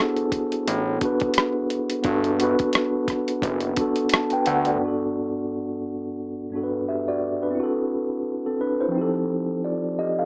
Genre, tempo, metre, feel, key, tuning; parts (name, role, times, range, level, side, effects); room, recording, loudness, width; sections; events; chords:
lo-fi hip hop; 87 BPM; 4/4; swing 58% on 16ths; G major; A4 = 440 Hz
mellow tine electric piano; accompaniment; 0.0-10.3 s; G2 to A5; -25 LUFS; equal; cassette tape
dusty soul sampler-style drum kit; drums; 0.2-4.8 s; hi-hat, kick drum, rim click; -26 LUFS; equal
fat analog bass; bass; 0.7-4.8 s; F#1 to D2; -29 LUFS; equal
moderate booth ambience, RT60 0.2 s; cassette tape, small speaker sound; -24 LUFS; mono
0.0-4.8 A section; 4.8-10.3 B section
0.0 Gmaj9; 7.6 F#m7b5; 8.9 F9